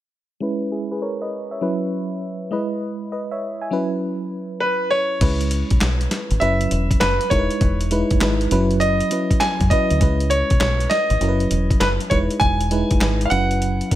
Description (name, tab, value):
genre	R&B, new jack swing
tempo	100 BPM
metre	4/4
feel	swing 65% on 16ths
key	C# minor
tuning	A4 = 440 Hz
part	FM electric piano with auto-pan	accompaniment	0.4-14.0 s	F#3 to G#5	-23 LUFS	right 1 dB	low-pass filter
part	clear concert grand piano	melody	4.6-14.0 s	B4 to G#5	-22 LUFS	equal	none
part	deep dub fingered electric bass	bass	5.2-13.8 s	E1 to F#2	-21 LUFS	equal	none
part	dusty soul sampler-style drum kit	drums	5.2-14.0 s	crash cymbal, handclaps, hi-hat, kick drum, snare drum	-21 LUFS	equal	gated reverb
room	digital ambience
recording	none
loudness	-18 LUFS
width	side -13 dB against mid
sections	0.4-5.2 A section; 5.2-14.0 B section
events	filter sweep on FM electric piano 0.4-5.2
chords	0.4 C#m7; 1.6 F#7sus4; 2.5 Emaj7; 3.7 F#7sus4; 5.2 C#m7; 6.4 F#7sus4; 7.3 Emaj7; 8.5 F#7sus4; 10.0 C#m7; 11.2 F#7sus4; 12.1 Emaj7; 13.3 F#7sus4